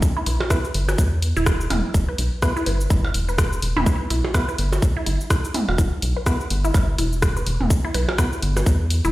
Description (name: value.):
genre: minimal techno.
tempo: 125 BPM.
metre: 4/4.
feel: swing 59% on 16ths.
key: E minor.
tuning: A4 = 440 Hz.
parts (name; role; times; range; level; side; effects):
electronic kick drum; drums; 0.0-8.8 s; none; -20 LUFS; equal; small room reverb.
garage drum kit; drums; 0.0-9.1 s; cabasa, hi-hat, rim click; -28 LUFS; equal; small room reverb.
resonant blip pluck; riff; 0.2-9.1 s; E4 to B4; -28 LUFS; equal; phaser, sidechain pumping, digital delay.
rubbery square bass; bass; 0.3-9.1 s; E1 to E2; -22 LUFS; equal; sidechain pumping.
electronic percussion blips and toms; percussion; 0.4-8.6 s; none; -27 LUFS; right 1 dB; small room reverb, tape echo.
percussive organ stab; stabs; 0.5-8.3 s; B3 to B4; -31 LUFS; right 1 dB; chorus, tape echo.
room: light reverb.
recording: played on a big sound system in a bare room, stone room reverb.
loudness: -18 LUFS.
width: side -17 dB against mid.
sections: 0.0-9.1 A section.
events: none.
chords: 0.0 E5.